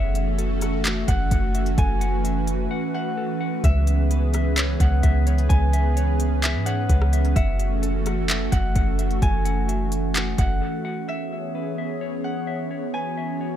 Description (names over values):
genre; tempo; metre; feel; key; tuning
hip hop, atmospheric cloud-rap; 129 BPM; 4/4; half-time; F# minor; A4 = 440 Hz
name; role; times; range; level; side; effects
Celtic harp; melody; 0.0-13.6 s; E5 to G#5; -31 LUFS; equal; dub echo
airy breathy pad; sustained chords; 0.0-13.6 s; E3 to C#5; -27 LUFS; right 2 dB; chorus, sidechain pumping
mellow electric guitar; arpeggios; 0.0-13.6 s; A4 to F#5; -35 LUFS; left 8 dB; dub echo
soft 808-style bass; bass; 0.0-10.6 s; F#1 to G#2; -22 LUFS; equal; none
smooth R&B drum kit; drums; 0.2-10.5 s; handclaps, hi-hat, kick drum, rim click; -23 LUFS; equal; overdrive
room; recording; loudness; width
digital ambience; echo-heavy mix; -20 LUFS; side -11 dB against mid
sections
0.0-11.1 A section; 11.1-13.6 B section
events
break 2.7-3.6, 10.6-11.1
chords
0.0 F#m7; 3.6 C#m7; 7.4 F#m7; 11.1 C#m7